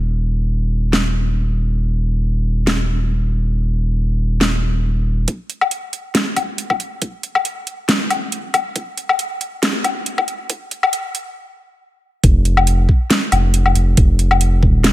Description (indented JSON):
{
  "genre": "deep dubstep",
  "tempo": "138 BPM",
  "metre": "4/4",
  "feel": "swing 55% on 16ths, half-time",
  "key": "unclear",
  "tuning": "A4 = 440 Hz",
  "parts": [
    { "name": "saturated sub bass", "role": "bass", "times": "0.0-5.3, 12.2-14.9 s", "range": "Eb1 to F1", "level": "-16 LUFS", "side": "equal", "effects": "tube saturation" },
    { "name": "dubstep drum kit", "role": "drums", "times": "0.9-14.9 s", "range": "hi-hat, snare drum, woodblock", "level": "-18 LUFS", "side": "left 1 dB", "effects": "none" },
    { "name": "electronic kick drum", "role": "drums", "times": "5.3-14.7 s", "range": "none", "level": "-15 LUFS", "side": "equal", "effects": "high-pass filter on kick" }
  ],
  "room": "little or no reverb",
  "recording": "high-pass filter",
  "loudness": "-15 LUFS",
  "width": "side -15 dB against mid",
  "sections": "0.0-5.3 A section; 5.3-12.2 B section; 12.2-14.9 C section",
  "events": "build-up 5.3-12.2; stop 11.4-12.2; drop 12.2-14.9",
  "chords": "none",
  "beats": "| 0.06 0.50 0.93 1.37 | 1.80 2.23 2.67 3.10 | 3.54 3.97 4.41 4.84 | 5.28 5.71 6.15 6.58 | 7.02 7.45 7.89 8.32 | 8.76 9.19 9.63 10.06 | 10.50 10.93 11.37 11.80 | 12.23 12.67 13.11 13.54 | 13.97 14.41 14.84"
}